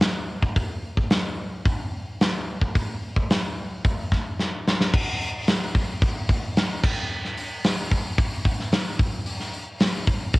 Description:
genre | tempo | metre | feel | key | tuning
rock | 110 BPM | 4/4 | straight | none | none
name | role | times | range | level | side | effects
big rock drum kit | drums | 0.0-10.4 s | crash cymbal, hi-hat, kick drum, snare drum | -22 LUFS | equal | cassette tape
room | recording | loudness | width
light reverb | home recording on cassette | -22 LUFS | side -22 dB against mid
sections
0.0-4.9 A section; 4.9-10.4 B section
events
drum fill 4.4-4.9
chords
none

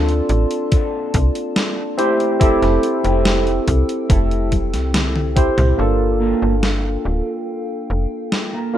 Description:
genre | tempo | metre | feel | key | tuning
vaporwave | 71 BPM | 4/4 | straight | unclear | A4 = 440 Hz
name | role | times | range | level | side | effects
barky tine electric piano | accompaniment | 0.0-8.8 s | Bb3 to C5 | -20 LUFS | right 1 dB | wide subtle chorus, vintage 12-bit sampler grit, analog delay
warbly tape-like pad | sustained chords | 0.0-8.8 s | Bb3 to E6 | -30 LUFS | left 4 dB | chorus, built-in reverb, vintage 12-bit sampler grit
slap-like FM bass | bass | 0.0-8.1 s | D1 to D2 | -19 LUFS | equal | none
gated 80s digital drum machine | drums | 0.1-8.5 s | hi-hat, snare drum, toms | -22 LUFS | equal | gated reverb, gated reverb snare
mellow electric guitar | riff | 0.3-8.7 s | A3 to Bb4 | -26 LUFS | equal | lush chorus, vintage 12-bit sampler grit, low-pass filter, analog delay
electronic kick drum | drums | 0.7-5.5 s | none | -17 LUFS | equal | overdrive
room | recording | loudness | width
little or no reverb | rough home demo mix, cassette tape | -16 LUFS | side -11 dB against mid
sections
0.0-5.8 A section; 5.8-8.8 B section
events
filter sweep on clean electric guitar 0.0-5.8; drum fill 4.5-5.8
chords
0.0 Bbmaj9; 2.0 Fmaj9; 5.8 Gm9

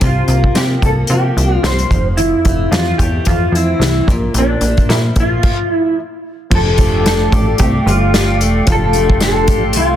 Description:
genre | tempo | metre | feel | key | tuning
indie pop, bedroom pop | 111 BPM | 4/4 | swing 55% on 16ths | F major | A4 = 439 Hz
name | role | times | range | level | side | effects
electric guitar through a small old amp | melody | 0.0-10.0 s | D4 to C5 | -17 LUFS | equal | analog chorus, slapback echo
picked steel-string acoustic guitar | accompaniment | 0.0-10.0 s | F2 to G4 | -20 LUFS | left 2 dB | wide subtle chorus, vibrato effect
plucky analog bass | bass | 0.0-10.0 s | E1 to C3 | -16 LUFS | equal | none
unplugged drum kit | drums | 0.0-9.9 s | crash cymbal, hi-hat, kick drum, snare drum | -16 LUFS | equal | none
mellow tonewheel organ | accompaniment | 6.5-9.6 s | F3 to G4 | -23 LUFS | right 4 dB | chorus vibrato, fast rotary speaker, cassette tape
breathy large flute ensemble | sustained chords | 6.5-10.0 s | A4 to D6 | -23 LUFS | right 2 dB | none
room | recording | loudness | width
light reverb, studio ambience | dense, heavily limited modern master | -11 LUFS | side -11 dB against mid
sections
0.0-6.5 A section; 6.5-10.0 B section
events
stop 5.4-6.5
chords
0.0 C9sus4; 1.9 Fmaj7; 4.1 Bbmaj7; 6.5 F69

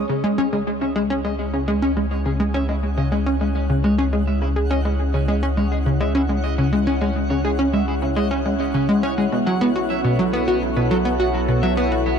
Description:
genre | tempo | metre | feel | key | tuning
ambient, sequencer-driven space music | 104 BPM | 4/4 | straight | C# minor | A4 = 440 Hz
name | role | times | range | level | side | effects
sweeping resonant pad | sustained chords | 0.0-12.2 s | B3 to D#6 | -26 LUFS | left 1 dB | chorus
plucky analog bass | riff | 0.0-12.0 s | B2 to F#4 | -20 LUFS | equal | lush chorus, tape echo
warm sub bass | bass | 0.0-12.2 s | B1 to C#2 | -24 LUFS | equal | none
electric guitar at the edge of break-up | arpeggios | 0.1-12.2 s | B3 to F#5 | -32 LUFS | moving between left 3 dB and right 5 dB | auto-pan, tape echo
twinkling granular texture | texture | 1.4-12.2 s | F#5 | -37 LUFS | equal | built-in reverb
room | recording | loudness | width
moderate huge ambient reverb, RT60 7.3 s | dark, warm production | -18 LUFS | side -7 dB against mid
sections
0.1-12.2 A section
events
fade-in on clean electric guitar 0.1-12.2; fade-in on analog synth pad 0.1-12.2; fade-in on synth texture 0.1-12.2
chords
0.1 C#madd9; 9.3 B7sus4

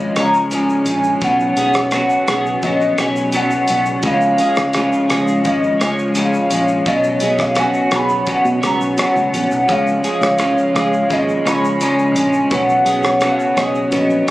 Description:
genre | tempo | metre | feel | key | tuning
indie pop, bedroom pop | 85 BPM | 4/4 | straight | unclear | A4 = 440 Hz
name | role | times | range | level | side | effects
hollow clarinet-like synth lead | melody | 0.0-14.3 s | D#5 to B5 | -18 LUFS | equal | phaser, analog chorus, analog delay
electric guitar at the edge of break-up | accompaniment | 0.0-14.3 s | B2 to C#4 | -18 LUFS | equal | lush chorus, vibrato effect
string machine, cellos | sustained chords | 0.0-14.3 s | C#3 to F#4 | -26 LUFS | equal | none
fingered electric bass | bass | 0.0-14.3 s | G#1 to B2 | -24 LUFS | equal | none
electric guitar through a small old amp | second line | 0.2-14.3 s | E#4 to C#5 | -26 LUFS | right 2 dB | lush chorus, analog delay
cloth-damped thuddy drum kit | drums | 0.2-14.3 s | hi-hat, kick drum, rim click, shaker | -23 LUFS | equal | none
reed electric piano | accompaniment | 9.7-14.3 s | A#3 to C#5 | -21 LUFS | right 1 dB | cassette tape
room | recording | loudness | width
light reverb, studio reverb | recorded on a phone in the room, studio ambience | -14 LUFS | side -16 dB against mid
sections
0.0-14.3 A section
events
none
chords
0.0 C#; 1.2 Bsus2; 4.0 C#; 6.9 Bsus2; 9.7 C#; 12.5 Bsus2

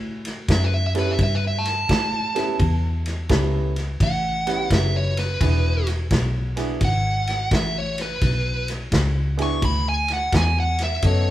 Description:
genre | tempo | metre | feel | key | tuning
electric blues shuffle | 85 BPM | 4/4 | swing 66% on 8ths | unclear | A4 = 440 Hz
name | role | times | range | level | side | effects
vintage muted fingered electric bass | bass | 0.0-11.3 s | E1 to A2 | -23 LUFS | equal | none
natural country drum kit | drums | 0.2-11.2 s | kick drum, ride cymbal, snare drum | -25 LUFS | equal | none
smooth overdriven lead guitar | melody | 0.5-11.3 s | B4 to C#6 | -24 LUFS | right 1 dB | none
warm upright piano | accompaniment | 0.9-9.6 s | B3 to B4 | -28 LUFS | right 3 dB | none
mellow horn section | stabs | 11.0-11.3 s | B3 to A4 | -25 LUFS | left 5 dB | none
room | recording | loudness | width
moderate large studio reverb, RT60 1.4 s | band playing live in one room | -19 LUFS | side -14 dB against mid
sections
0.0-11.3 A section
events
lead electric guitar solo 0.0-11.3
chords
0.0 A7; 5.4 E7

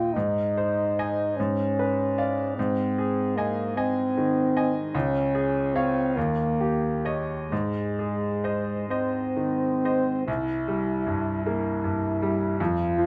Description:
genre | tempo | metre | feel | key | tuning
classical, romantic duo for French horn and grand piano | 42-53 BPM (dotted quarters) | 6/8 | rubato | Ab major | A4 = 437 Hz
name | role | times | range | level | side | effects
warm French horn | melody | 0.0-13.1 s | Ab3 to F4 | -28 LUFS | equal | none
bright grand piano | accompaniment | 0.0-13.1 s | C2 to Ab5 | -29 LUFS | equal | none
room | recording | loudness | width
light reverb | close, detailed microphones | -26 LUFS | mono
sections
0.0-10.3 A section; 10.3-13.1 B section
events
none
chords
0.1 Ab; 1.4 Abdim7; 2.6 Ab; 4.9 Db; 6.2 Eb7; 7.5 Ab; 10.3 C7

